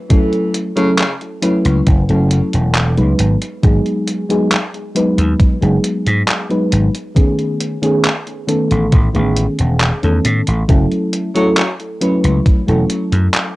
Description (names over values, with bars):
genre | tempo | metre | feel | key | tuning
vaporwave | 68 BPM | 4/4 | straight | F# dorian | A4 = 440 Hz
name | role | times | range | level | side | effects
mellow FM electric piano | accompaniment | 0.1-13.5 s | D#3 to B4 | -16 LUFS | equal | wide subtle chorus, cassette tape, analog delay
detuned 8-bit digital drum machine | drums | 0.1-13.5 s | handclaps, hi-hat | -19 LUFS | equal | cassette tape
electronic kick drum | drums | 0.1-12.6 s | none | -11 LUFS | equal | overdrive, cassette tape
clear tenor saxophone | melody | 0.8-1.1, 11.4-11.7 s | C#3 to F#3 | -25 LUFS | equal | cassette tape, tape echo
vintage slap bass | bass | 1.7-13.3 s | E1 to A2 | -14 LUFS | equal | none
room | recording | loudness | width
light reverb | home recording on cassette | -13 LUFS | side -19 dB against mid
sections
0.0-13.6 A section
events
none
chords
0.0 F#m7; 3.2 G#m7; 7.2 Amaj9#11; 10.7 F#m7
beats
| 0.10 0.98 1.87 2.75 | 3.63 4.51 5.40 6.28 | 7.16 8.04 8.93 9.81 | 10.69 11.57 12.46 13.34